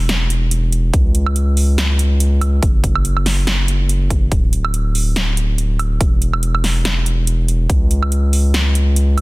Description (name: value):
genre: future bass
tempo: 142 BPM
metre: 4/4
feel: swing 56% on 16ths, half-time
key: unclear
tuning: A4 = 442 Hz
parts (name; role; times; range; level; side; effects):
- saturated sub bass; bass; 0.0-9.2 s; D1 to C#2; -15 LUFS; equal; sidechain pumping
- big-room dance drum kit; drums; 0.1-9.2 s; hi-hat, snare drum, woodblock; -21 LUFS; right 2 dB; none
- electronic kick drum; drums; 0.9-7.8 s; none; -15 LUFS; equal; none
room: little or no reverb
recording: dense, heavily limited modern master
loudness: -14 LUFS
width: side -22 dB against mid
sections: 0.0-9.2 A section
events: none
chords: none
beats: 0.09 0.51 | 0.94 1.36 1.78 2.20 | 2.63 3.05 3.47 3.89 | 4.32 4.74 5.16 5.58 | 6.01 6.43 6.85 7.27 | 7.70 8.12 8.54 8.96